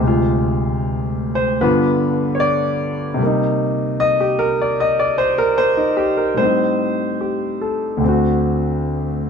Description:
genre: solo jazz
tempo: 75 BPM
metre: 4/4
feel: swing 67% on 8ths, rubato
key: unclear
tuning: A4 = 435 Hz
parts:
  - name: clear concert grand piano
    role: solo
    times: 0.0-9.3 s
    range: D2 to Eb5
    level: -16 LUFS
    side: equal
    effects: none
room: wet studio reverb, RT60 0.7 s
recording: band playing live in one room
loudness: -16 LUFS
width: side -6 dB against mid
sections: 0.0-9.3 A section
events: grand piano solo 0.0-9.3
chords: 0.0 Dm7b5; 1.6 G7; 3.2 Cm7; 6.4 Am7b5; 8.0 D7

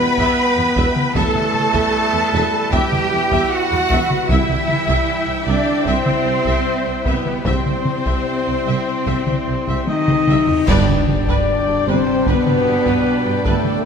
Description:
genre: cinematic, epic orchestral film score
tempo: 76 BPM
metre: 4/4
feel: straight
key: G major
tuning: A4 = 439 Hz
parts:
  - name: warm symphonic violin section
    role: melody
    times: 0.0-13.8 s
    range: A4 to B5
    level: -29 LUFS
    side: left 4 dB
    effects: none
  - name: clear symphonic violin section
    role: second line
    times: 0.0-13.8 s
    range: B4 to B5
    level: -27 LUFS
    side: left 3 dB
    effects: none
  - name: mellow silver concert flute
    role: second line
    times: 0.0-9.9 s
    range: B4 to B5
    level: -26 LUFS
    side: left 2 dB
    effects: none
  - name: warm symphonic viola section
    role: accompaniment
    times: 0.0-13.8 s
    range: G4 to G5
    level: -28 LUFS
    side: equal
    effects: none
  - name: dark French horn section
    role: sustained chords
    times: 0.0-13.8 s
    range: G3 to E4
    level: -23 LUFS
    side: left 4 dB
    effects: none
  - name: pipe organ, principal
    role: sustained chords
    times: 0.0-13.8 s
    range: G3 to G5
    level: -29 LUFS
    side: left 1 dB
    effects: none
  - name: warm trombone section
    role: sustained chords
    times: 0.0-13.8 s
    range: B2 to F#4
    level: -26 LUFS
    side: right 2 dB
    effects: none
  - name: mellow trumpet section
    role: stabs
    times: 0.0-13.8 s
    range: A4 to E5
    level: -27 LUFS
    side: right 1 dB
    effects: none
  - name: dark tuba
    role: bass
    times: 0.0-13.5 s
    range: E1 to C2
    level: -25 LUFS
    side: right 4 dB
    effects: none
  - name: rich symphonic cello section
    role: bass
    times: 0.0-13.8 s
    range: A2 to B4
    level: -23 LUFS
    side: right 2 dB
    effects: none
  - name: rich symphonic double bass section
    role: bass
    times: 0.0-13.5 s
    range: C2 to G2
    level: -26 LUFS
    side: right 4 dB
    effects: none
  - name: taiko ensemble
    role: drums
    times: 0.2-13.9 s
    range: none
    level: -22 LUFS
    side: left 1 dB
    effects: none
  - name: cymbal swell, clash cymbals and concert bass drum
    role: percussion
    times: 7.5-12.2 s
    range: none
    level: -28 LUFS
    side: equal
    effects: none
  - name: reverse cymbal and sub drop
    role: sound effects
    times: 10.5-13.8 s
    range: none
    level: -32 LUFS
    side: equal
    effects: none
  - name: timpani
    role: percussion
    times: 10.7-11.8 s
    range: G2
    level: -27 LUFS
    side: left 1 dB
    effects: none
room: moderate scoring stage reverb, RT60 1.8 s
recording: none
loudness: -15 LUFS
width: side -6 dB against mid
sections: 0.0-10.7 A section; 10.7-13.9 B section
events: drum fill 9.9-10.7; band accent 10.7-11.5; impact 10.7-13.8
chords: 0.0 Em; 4.3 C; 10.7 G

